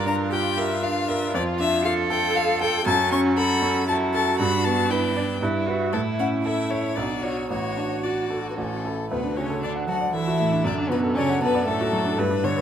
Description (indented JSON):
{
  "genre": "quick classical-period movement for piano quartet",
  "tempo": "117 BPM",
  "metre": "3/4",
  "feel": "straight",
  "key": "D major",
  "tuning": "A4 = 440 Hz",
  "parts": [
    { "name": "clear violin", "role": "melody", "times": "0.0-12.6 s", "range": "A4 to C#6", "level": "-27 LUFS", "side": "left 6 dB", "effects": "none" },
    { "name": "rich cello", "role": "second line", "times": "0.0-12.2 s", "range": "A2 to Bb4", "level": "-28 LUFS", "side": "right 6 dB", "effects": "none" },
    { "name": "rich violin", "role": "second line", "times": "0.0-12.2 s", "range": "A3 to F#4", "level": "-30 LUFS", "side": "left 3 dB", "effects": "none" },
    { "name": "bright baby grand piano", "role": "accompaniment", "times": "0.0-12.6 s", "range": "A1 to A5", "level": "-24 LUFS", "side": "right 1 dB", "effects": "none" }
  ],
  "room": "moderate recital hall reverb, RT60 1.6 s",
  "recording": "close, detailed microphones",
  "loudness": "-21 LUFS",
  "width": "side -9 dB against mid",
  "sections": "0.0-9.1 A section; 9.1-12.6 B section",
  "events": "none",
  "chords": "0.0 Gm7; 1.3 Dm/F; 2.9 F#m; 4.4 G; 5.4 Em/G; 5.9 A; 7.0 Bm; 7.5 D/A; 8.6 A; 9.1 D; 10.7 D/F#"
}